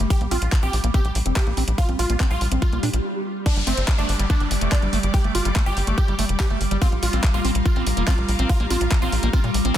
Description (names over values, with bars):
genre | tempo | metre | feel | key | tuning
psychedelic trance | 143 BPM | 4/4 | straight | G minor | A4 = 440 Hz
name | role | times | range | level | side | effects
evolving wavetable pad | sustained chords | 0.0-9.8 s | G3 | -30 LUFS | equal | chorus, built-in reverb, phaser, sidechain pumping
liquid acid bass | riff | 0.0-9.7 s | G3 to D4 | -30 LUFS | moving between left 5 dB and right 5 dB | phaser, auto-pan, sidechain pumping, tape echo
tight sequencer bass | bass | 0.0-9.7 s | F1 to Bb2 | -22 LUFS | equal | none
garage drum kit | drums | 0.0-9.8 s | crash cymbal, handclaps, hi-hat | -29 LUFS | equal | overdrive
supersaw stab | melody | 0.1-9.8 s | C4 to G4 | -29 LUFS | right 1 dB | phaser, sidechain pumping, tape echo
electronic kick drum | drums | 0.1-9.8 s | none | -19 LUFS | equal | overdrive
swell and downlifter | sound effects | 2.8-6.8 s | none | -32 LUFS | left 1 dB | none
rich studio string section | texture | 3.5-9.8 s | G3 to D6 | -32 LUFS | right 1 dB | sidechain pumping
room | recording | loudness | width
digital ambience | dense, heavily limited modern master | -18 LUFS | side -11 dB against mid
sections
0.0-3.5 A section; 3.5-9.8 B section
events
filter sweep on acid bass 0.0-3.5; swell 2.8-3.5; stop 3.0-3.5; drop 3.5-9.8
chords
0.1 Bb5; 3.5 G5; 6.8 Bb5